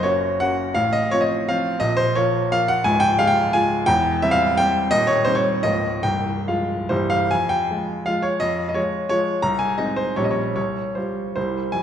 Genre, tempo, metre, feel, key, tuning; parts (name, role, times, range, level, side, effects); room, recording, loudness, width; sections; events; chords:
classical, romantic triple-time dance for piano with dotted rhythms; 130-189 BPM; 3/4; rubato; F minor; A4 = 440 Hz
clear baby grand piano; solo; 0.0-11.8 s; C1 to Bb5; -18 LUFS; equal
moderate concert hall reverb, RT60 2.1 s; recorded in a church or concert hall, nothing above 10.4 kHz; -18 LUFS; side -9 dB against mid
0.0-7.3 A section; 7.3-11.8 B section
0.0 Gb; 0.8 F/A; 1.8 Bbm; 2.9 Db; 3.9 C/E; 4.9 Cm/Eb; 5.6 Bbm/Db; 6.0 Fm/C; 6.9 C; 7.3 Fm; 9.4 Ab/C; 10.2 Gdim/Bb; 10.6 Csus4; 11.4 C